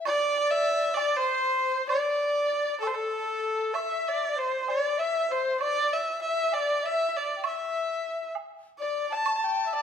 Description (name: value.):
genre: chinese traditional, Chinese chamber ensemble.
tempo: 65 BPM.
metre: 2/4.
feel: straight.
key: D shang mode.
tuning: A4 = 440 Hz.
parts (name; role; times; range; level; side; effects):
bright reedy large dizi; second line; 0.0-9.8 s; A4 to A5; -29 LUFS; left 4 dB; none.
rich erhu; melody; 0.1-9.8 s; A4 to A5; -27 LUFS; right 2 dB; none.
woodblock; percussion; 0.1-9.5 s; none; -36 LUFS; right 8 dB; none.
room: moderate recital hall reverb, RT60 1.2 s.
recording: none.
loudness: -25 LUFS.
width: side -8 dB against mid.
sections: 0.0-3.7 A section; 3.7-9.8 B section.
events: none.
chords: none.